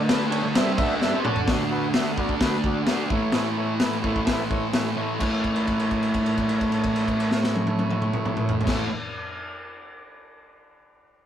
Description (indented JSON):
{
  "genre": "garage rock duo or trio",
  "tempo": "129 BPM",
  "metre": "4/4",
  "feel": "straight",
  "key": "A major",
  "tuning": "A4 = 440 Hz",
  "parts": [
    { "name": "combo organ", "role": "sustained chords", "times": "0.0-8.8 s", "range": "D4 to E5", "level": "-30 LUFS", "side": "equal", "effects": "none" },
    { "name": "fuzz guitar", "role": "riff", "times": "0.0-8.9 s", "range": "A2 to D5", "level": "-24 LUFS", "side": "right 1 dB", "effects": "distortion" },
    { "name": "raw garage drum kit", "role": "drums", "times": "0.1-8.8 s", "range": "crash cymbal, hi-hat, kick drum, ride cymbal, snare drum, toms", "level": "-26 LUFS", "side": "left 1 dB", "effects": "none" }
  ],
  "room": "moderate small room reverb, RT60 0.5 s",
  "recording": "rough rehearsal-room recording",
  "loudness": "-21 LUFS",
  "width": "side -10 dB against mid",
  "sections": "0.0-1.5 A section; 1.5-5.2 B section; 5.2-8.9 C section",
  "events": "drum fill 1.0-1.5; held note 5.2-8.7",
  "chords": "0.0 D5; 1.5 D; 3.1 A",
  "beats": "0.10 0.56 1.02 | 1.49 1.96 2.42 2.89 | 3.35 3.82 4.29 4.75 | 5.22 5.69 6.15 6.62 | 7.09 7.55 8.02 8.48"
}